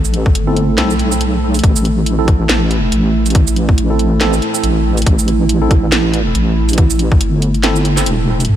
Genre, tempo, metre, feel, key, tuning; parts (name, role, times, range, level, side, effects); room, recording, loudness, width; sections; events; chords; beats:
deep dubstep; 140 BPM; 4/4; swing 58% on 16ths, half-time; A minor; A4 = 439 Hz
dark analog pad; sustained chords; 0.0-8.6 s; A3 to A4; -18 LUFS; right 2 dB; chorus
deep soft wobble bass; bass; 0.0-8.6 s; E1 to B1; -15 LUFS; equal; chorus
garage drum kit; drums; 0.0-8.5 s; hi-hat, shaker, snare drum; -19 LUFS; right 1 dB
electronic kick drum; drums; 0.3-7.2 s; -13 LUFS; equal
tine electric piano; stabs; 0.5-7.8 s; C4 to A4; -22 LUFS; right 1 dB; medium stereo tremolo, dub echo
sub drop; sound effects; 8.5-8.6 s; -10 LUFS; equal
light reverb; -11 LUFS; side -11 dB against mid
0.0-8.5 A section
0.0 Am
0.35 0.78 1.21 | 1.64 2.06 2.49 2.92 | 3.35 3.78 4.21 4.64 | 5.06 5.49 5.92 6.35 | 6.78 7.21 7.64 8.06 | 8.49